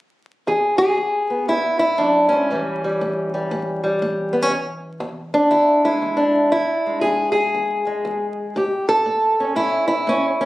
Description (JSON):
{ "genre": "acoustic country blues, solo or duo", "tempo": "119 BPM", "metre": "4/4", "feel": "swing 64% on 8ths", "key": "E mixolydian", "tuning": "A4 = 438 Hz", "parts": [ { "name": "fingerpicked old ladder-braced acoustic guitar", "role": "solo", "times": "0.5-10.5 s", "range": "E2 to A4", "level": "-17 LUFS", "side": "equal", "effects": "slapback echo" } ], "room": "light reverb", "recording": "recorded on a phone in the room, studio reverb, vinyl crackle, compression", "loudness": "-17 LUFS", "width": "side -17 dB against mid", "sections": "0.5-10.5 A section", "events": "none", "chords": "0.5 E; 2.5 A7; 4.5 E7; 8.6 A7" }